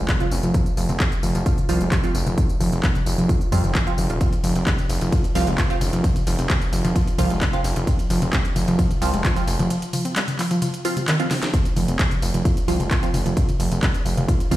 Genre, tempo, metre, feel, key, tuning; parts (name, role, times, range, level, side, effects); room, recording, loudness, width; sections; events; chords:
driving peak-time techno; 131 BPM; 4/4; straight; F minor; A4 = 440 Hz
warbly dusty pluck; riff; 0.0-14.6 s; Eb3 to F4; -25 LUFS; equal; chorus, sidechain pumping, ping-pong delay
gritty driven synth bass; bass; 0.0-14.6 s; Eb1 to F2; -23 LUFS; equal; sidechain pumping
electronic kick drum; drums; 0.1-14.6 s; -21 LUFS; equal; studio reverb
techno drum kit; drums; 0.1-14.6 s; handclaps, hi-hat, ride cymbal, snare drum, tambourine, toms; -26 LUFS; left 1 dB; sidechain pumping on hats, studio reverb, sidechain pumping on perc, sidechain pumping on cymbals, sidechain pumping on toms
filtered dub chord stab; stabs; 0.2-14.6 s; F3 to F4; -28 LUFS; right 4 dB; phaser, sidechain pumping, dub echo
light reverb, digital ambience; played on a big sound system in a bare room, stone room reverb; -18 LUFS; side -15 dB against mid
0.0-14.6 A section
drum fill 11.3
0.0 F5